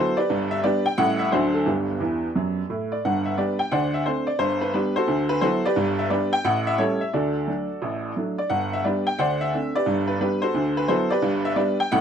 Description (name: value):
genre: jazz, stride piano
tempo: 176 BPM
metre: 4/4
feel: swing 66% on 8ths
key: G major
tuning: A4 = 441 Hz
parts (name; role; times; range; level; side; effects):
- clear upright piano; solo; 0.0-12.0 s; G1 to G5; -21 LUFS; equal; none
room: light reverb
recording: close, detailed microphones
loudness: -21 LUFS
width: side -8 dB against mid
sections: 0.0-3.0 A section; 3.0-12.0 A section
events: upright piano fill 2.0-3.0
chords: 0.3 G; 1.0 A7; 1.3 D7; 1.7 G; 3.7 D5; 4.4 G; 5.1 D69; 5.8 G; 6.4 A7; 7.1 D; 8.5 G; 9.2 D5; 9.9 G; 10.5 D69; 11.2 G